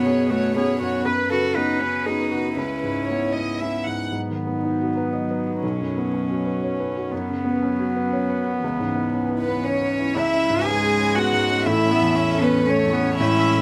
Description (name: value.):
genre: neoclassical piano and strings.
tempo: 119 BPM.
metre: 3/4.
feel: rubato.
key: C# minor.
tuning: A4 = 440 Hz.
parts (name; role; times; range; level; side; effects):
warm chamber violin section; melody; 0.0-4.1, 9.4-13.6 s; B4 to G#5; -28 LUFS; equal; none.
clear cello; second line; 0.0-13.6 s; E3 to G#4; -27 LUFS; equal; none.
felt-muted upright piano; accompaniment; 0.0-13.6 s; A1 to D#5; -27 LUFS; equal; none.
warm viola; accompaniment; 0.0-13.6 s; G#3 to B4; -29 LUFS; equal; none.
chorused pulse-width pad; sustained chords; 4.1-13.6 s; E3 to C#5; -33 LUFS; equal; none.
room: light reverb.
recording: close, detailed microphones.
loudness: -22 LUFS.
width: mono.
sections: 0.0-4.1 A section; 4.1-10.2 B section; 10.2-13.6 C section.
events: none.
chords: 0.0 Bsus2; 1.0 F#sus4; 2.6 C#m7; 4.1 G#m7; 5.6 Bsus2; 7.1 F#sus4; 8.6 C#m7; 11.7 A.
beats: 0.05 0.55 | 1.05 1.55 2.06 | 2.56 3.08 3.59 | 4.11 4.61 5.12 | 5.62 6.13 6.62 | 7.12 7.61 8.12 | 8.62 9.14 9.65 | 10.16 10.66 11.17 | 11.67 12.18 12.68 | 13.18.